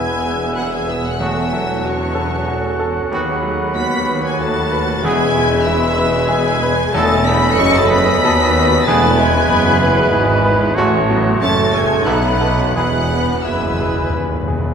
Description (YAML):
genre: classical, romantic movement for piano and orchestra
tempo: 94 BPM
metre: 3/4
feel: rubato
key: E major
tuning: A4 = 440 Hz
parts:
  - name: clear concert grand piano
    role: melody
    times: 0.0-14.7 s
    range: A1 to B4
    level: -20 LUFS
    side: left 1 dB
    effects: none
  - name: warm chamber violin section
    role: melody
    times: 0.0-14.1 s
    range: C#6 to C#7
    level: -24 LUFS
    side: equal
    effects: none
  - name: clear oboe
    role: second line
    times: 0.0-14.5 s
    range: B4 to F#5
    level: -25 LUFS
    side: right 1 dB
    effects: none
  - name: hollow flute section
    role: second line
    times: 0.0-14.5 s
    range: G#5 to B5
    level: -26 LUFS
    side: left 2 dB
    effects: none
  - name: warm clarinet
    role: second line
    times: 0.0-14.5 s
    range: D#4 to B4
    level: -27 LUFS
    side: left 1 dB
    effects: none
  - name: warm symphonic violin section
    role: second line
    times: 0.0-14.1 s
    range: C#5 to C#6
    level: -24 LUFS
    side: left 3 dB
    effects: none
  - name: dark chamber viola section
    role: accompaniment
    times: 0.0-14.6 s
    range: F#3 to B4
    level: -24 LUFS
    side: right 3 dB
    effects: none
  - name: mellow bassoon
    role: accompaniment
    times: 0.0-14.5 s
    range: E3 to B3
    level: -25 LUFS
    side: right 2 dB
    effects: none
  - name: mellow French horn section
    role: sustained chords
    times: 0.0-14.2 s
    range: C#3 to C#4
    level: -23 LUFS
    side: left 4 dB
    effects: none
  - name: warm chamber cello section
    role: bass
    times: 0.0-14.7 s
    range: D#2 to B2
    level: -25 LUFS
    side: right 2 dB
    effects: none
  - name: warm chamber double bass section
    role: bass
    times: 0.0-14.7 s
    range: E1 to D#2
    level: -24 LUFS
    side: right 2 dB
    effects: none
  - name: warm tuba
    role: bass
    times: 0.0-14.7 s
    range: E1 to D#2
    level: -25 LUFS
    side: right 3 dB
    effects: none
  - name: clear trombone section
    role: sustained chords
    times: 1.2-13.0 s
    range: A2 to E4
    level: -29 LUFS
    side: right 2 dB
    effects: none
  - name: warm trumpet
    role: stabs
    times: 1.2-13.0 s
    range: F#4 to A4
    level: -25 LUFS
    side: right 2 dB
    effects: none
  - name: timpani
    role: percussion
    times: 12.8-14.7 s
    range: E2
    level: -24 LUFS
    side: left 2 dB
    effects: none
room: wet scoring stage reverb, RT60 1.8 s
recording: minimal, uncompressed stereo recording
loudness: -13 LUFS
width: side -7 dB against mid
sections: 0.0-14.7 A section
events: timpani fill 12.8-14.7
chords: 0.0 E; 1.2 F#m7/E; 3.1 B/D#; 5.0 E; 6.9 B7/E; 8.9 E; 10.8 F#m/A; 12.1 B7; 12.8 E